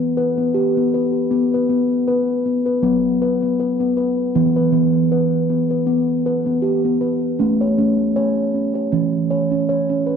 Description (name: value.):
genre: world meditative, meditative tuned percussion.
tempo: 79 BPM.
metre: 4/4.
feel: swing 56% on 16ths.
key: unclear.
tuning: A4 = 440 Hz.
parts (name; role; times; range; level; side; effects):
steel tongue drum; solo; 0.0-10.2 s; E3 to C#5; -16 LUFS; equal; ping-pong delay.
room: wet concert hall reverb, RT60 2.0 s, small room ambience.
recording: dark, warm production.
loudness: -16 LUFS.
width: side -7 dB against mid.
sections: 0.0-10.2 A section.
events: none.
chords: 0.0 Em (rootless); 1.3 B5; 4.4 E5; 7.4 A.